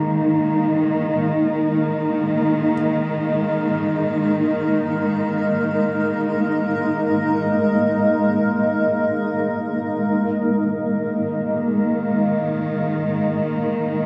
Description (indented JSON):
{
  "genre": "ambient",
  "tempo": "free time",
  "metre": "none",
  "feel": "none",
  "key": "unclear",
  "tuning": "A4 = 440 Hz",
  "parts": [
    { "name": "granular cloud pad", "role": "sustained chords", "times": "0.0-14.1 s", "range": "Ab3 to F5", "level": "-21 LUFS", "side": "equal", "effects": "built-in reverb" },
    { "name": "felt-muted upright piano", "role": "arpeggios", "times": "0.0-2.7, 10.4-14.1 s", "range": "Ab3 to Eb5", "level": "-43 LUFS", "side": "equal", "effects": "none" },
    { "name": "warm studio cello section", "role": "bass", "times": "0.0-14.1 s", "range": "Eb3", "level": "-31 LUFS", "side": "equal", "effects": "none" }
  ],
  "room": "wet lush hall reverb, RT60 2.6 s",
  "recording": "cassette tape",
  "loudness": "-20 LUFS",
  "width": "mono",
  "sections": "0.0-10.1 A section; 10.1-14.1 B section",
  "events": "fade-out on cello section 0.0-10.1",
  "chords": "0.0 Ebsus4"
}